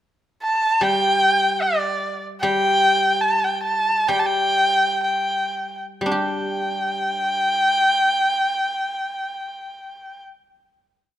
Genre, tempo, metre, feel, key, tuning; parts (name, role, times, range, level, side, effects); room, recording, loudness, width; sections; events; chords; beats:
chinese traditional, Chinese chamber ensemble; 50-76 BPM; 2/4; rubato; A4 = 440 Hz
warm erhu; melody; 0.4-10.2 s; D5 to A5; -19 LUFS; equal
guzheng; accompaniment; 0.8-11.2 s; G3 to G4; -26 LUFS; equal
light reverb; -18 LUFS; side -12 dB against mid
0.0-6.1 A section; 6.1-10.8 final chord
slowing down 2.4-6.1
0.01 | 0.82 1.62 | 2.42 3.23 | 4.09 5.03 | 6.12 7.29 | 8.45 9.61